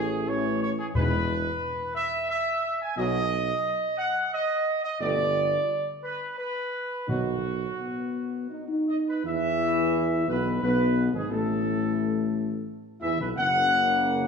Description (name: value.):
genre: classical.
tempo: 88 BPM.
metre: 3/4.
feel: straight.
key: unclear.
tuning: A4 = 440 Hz.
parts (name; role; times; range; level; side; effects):
dark trumpet section; melody; 0.0-14.3 s; F#4 to G#5; -27 LUFS; equal; none.
clear trombone section; sustained chords; 0.0-14.3 s; G#2 to A#3; -34 LUFS; right 2 dB; none.
dark French horn section; sustained chords; 0.0-14.3 s; G#3 to G4; -30 LUFS; left 4 dB; none.
warm tuba; bass; 0.0-14.3 s; E1 to E2; -31 LUFS; right 2 dB; none.
timpani; percussion; 0.9-1.9, 7.1-8.1 s; E2 to B2; -30 LUFS; left 1 dB; none.
room: wet recital hall reverb, RT60 1.7 s.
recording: minimal, uncompressed stereo recording.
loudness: -24 LUFS.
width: side -6 dB against mid.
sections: 0.0-9.2 A section; 9.2-14.3 B section.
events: none.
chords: 0.0 A; 0.9 E; 3.0 B; 5.0 G; 7.1 B; 9.2 Asus2; 13.4 F#.